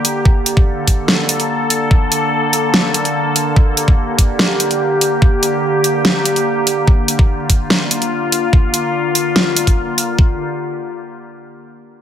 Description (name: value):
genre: heavy wobble dubstep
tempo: 145 BPM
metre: 4/4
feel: half-time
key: G minor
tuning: A4 = 442 Hz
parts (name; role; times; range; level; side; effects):
- evolving wavetable pad; sustained chords; 0.0-10.4 s; D3 to A4; -17 LUFS; left 1 dB; chorus, built-in reverb, sidechain pumping
- dubstep drum kit; drums; 0.0-10.1 s; hi-hat, snare drum; -15 LUFS; equal; small room ambience
- electronic kick drum; drums; 0.3-10.3 s; none; -11 LUFS; equal; small room ambience
room: light reverb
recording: none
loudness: -12 LUFS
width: side -10 dB against mid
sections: 0.0-10.2 A section; 10.2-11.8 B section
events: none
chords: 0.0 Gm